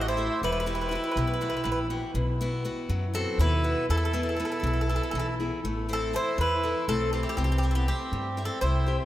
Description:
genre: greek folk, Greek bouzouki band.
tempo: 242 BPM (eighths).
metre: 7/8.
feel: straight.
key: unclear.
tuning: A4 = 440 Hz.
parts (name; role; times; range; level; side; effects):
Greek bouzouki; melody; 0.0-9.0 s; G4 to D#5; -31 LUFS; equal; none.
accordion; second line; 0.0-9.0 s; B3 to F#4; -33 LUFS; right 2 dB; none.
picked steel-string acoustic guitar; accompaniment; 0.0-9.1 s; B2 to E5; -33 LUFS; left 2 dB; none.
upright bass; bass; 0.0-9.0 s; E1 to G2; -28 LUFS; equal; none.
room: wet cathedral reverb, RT60 6.0 s.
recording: in a vast, echoing space.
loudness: -25 LUFS.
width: side -14 dB against mid.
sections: 0.0-5.6 A section; 5.6-9.1 B section.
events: none.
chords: 0.4 Emadd9; 2.2 Bsus4; 3.9 E; 5.6 Am; 7.4 C.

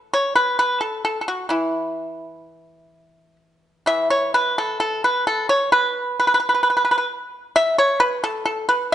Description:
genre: chinese traditional, Chinese solo plucked strings.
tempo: 64 BPM.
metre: 2/4.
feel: rubato.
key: E zhi mode.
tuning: A4 = 439 Hz.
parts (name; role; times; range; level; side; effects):
pipa; solo; 0.1-8.9 s; E3 to E5; -18 LUFS; equal; none.
room: moderate recital hall reverb, RT60 1.5 s.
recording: nothing above 10.6 kHz.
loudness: -18 LUFS.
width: side -11 dB against mid.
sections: 0.0-3.9 A section; 3.9-8.9 B section.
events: none.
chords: none.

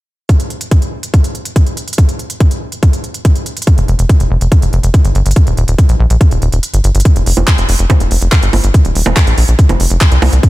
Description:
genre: psychedelic trance.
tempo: 142 BPM.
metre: 4/4.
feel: straight.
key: unclear.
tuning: A4 = 440 Hz.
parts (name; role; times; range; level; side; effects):
electronic kick drum; drums; 0.3-10.5 s; none; -11 LUFS; equal; none.
garage drum kit; drums; 0.3-10.5 s; bongos, handclaps, hi-hat; -19 LUFS; right 2 dB; none.
tight sequencer bass; bass; 3.8-10.4 s; Eb1 to C2; -11 LUFS; equal; none.
room: little or no reverb.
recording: none.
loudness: -9 LUFS.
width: side -18 dB against mid.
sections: 0.3-7.1 A section; 7.1-10.5 B section.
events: kick drops out 6.6-7.1.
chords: none.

